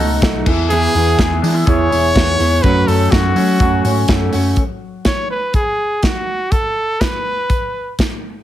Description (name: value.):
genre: jangly indie pop.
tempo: 124 BPM.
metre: 4/4.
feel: straight.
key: F# minor.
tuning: A4 = 442 Hz.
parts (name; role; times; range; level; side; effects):
brilliant trumpet; melody; 0.0-8.0 s; F#4 to C#5; -18 LUFS; equal; slapback echo.
semi-hollow electric guitar; accompaniment; 0.0-4.6 s; E3 to G#4; -20 LUFS; right 6 dB; none.
electric guitar through a small old amp; arpeggios; 0.0-5.1 s; B2 to G#4; -20 LUFS; left 6 dB; phaser, slapback echo.
hollow-body short-scale fingered electric bass; bass; 0.0-4.5 s; E1 to F#3; -18 LUFS; equal; none.
modern studio drum kit; drums; 0.2-8.1 s; crash cymbal, hi-hat, kick drum, snare drum; -17 LUFS; equal; none.
room: light reverb, small room ambience.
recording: heavily compressed radio sound.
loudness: -13 LUFS.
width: side -12 dB against mid.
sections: 0.0-4.6 A section; 4.6-8.4 B section.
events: none.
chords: 0.5 E; 2.6 F#m; 4.6 N.C..